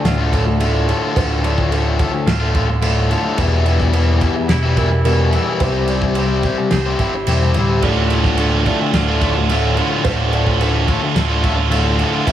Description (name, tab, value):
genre	post-rock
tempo	108 BPM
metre	4/4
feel	straight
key	D minor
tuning	A4 = 437 Hz
part	felt-muted upright piano	arpeggios	0.0-12.3 s	A4 to F5	-29 LUFS	right 6 dB	digital delay
part	twangy electric guitar	arpeggios	0.0-12.3 s	D2 to C5	-25 LUFS	right 1 dB	digital delay
part	crunchy overdriven guitar	riff	0.0-12.3 s	D2 to C5	-19 LUFS	left 4 dB	spring reverb
part	overdriven picked electric bass	bass	0.0-12.3 s	D1 to C2	-18 LUFS	equal	none
part	loose indie drum kit	drums	0.1-12.3 s	crash cymbal, kick drum, snare drum	-22 LUFS	right 1 dB	none
part	biting overdriven guitar	riff	7.8-12.3 s	D2 to F4	-20 LUFS	right 12 dB	spring reverb
room	light reverb, small room ambience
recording	none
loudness	-14 LUFS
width	side -11 dB against mid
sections	0.0-12.3 A section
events	none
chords	0.0 Dm; 3.4 Edim; 5.6 C; 7.8 Dm